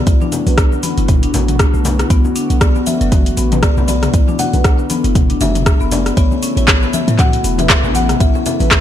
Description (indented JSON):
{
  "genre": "afro house",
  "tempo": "118 BPM",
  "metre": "4/4",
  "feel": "swing 57% on 16ths",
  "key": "B minor",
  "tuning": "A4 = 440 Hz",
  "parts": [
    { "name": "buzzing kalimba", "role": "melody", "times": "0.0-8.8 s", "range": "C#5 to F#5", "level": "-24 LUFS", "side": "left 1 dB", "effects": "digital delay" },
    { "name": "warm analog pad", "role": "sustained chords", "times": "0.0-8.8 s", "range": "C#3 to F#4", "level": "-24 LUFS", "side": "right 2 dB", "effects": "chorus, sidechain pumping" },
    { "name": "marimba with medium hard mallets", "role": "arpeggios", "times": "0.1-8.8 s", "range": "F#3 to B4", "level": "-20 LUFS", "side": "left 4 dB", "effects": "sidechain pumping, digital delay" },
    { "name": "warm 808-style bass", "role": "bass", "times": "0.1-8.8 s", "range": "E1 to A2", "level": "-18 LUFS", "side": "equal", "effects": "sidechain pumping" },
    { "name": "deep house drum kit", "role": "drums", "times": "0.1-8.8 s", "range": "handclaps, hi-hat, rim click, shaker, toms", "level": "-18 LUFS", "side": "left 1 dB", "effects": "overdrive" },
    { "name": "electronic kick drum", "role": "drums", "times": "0.1-8.8 s", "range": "none", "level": "-13 LUFS", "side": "equal", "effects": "overdrive" },
    { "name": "congas", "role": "percussion", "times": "0.2-8.7 s", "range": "none", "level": "-23 LUFS", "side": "left 4 dB", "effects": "none" }
  ],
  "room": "little or no reverb",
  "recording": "dark, warm production",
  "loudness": "-11 LUFS",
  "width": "side -11 dB against mid",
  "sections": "0.0-8.8 A section",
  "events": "none",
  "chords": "0.0 Bm7; 6.2 A"
}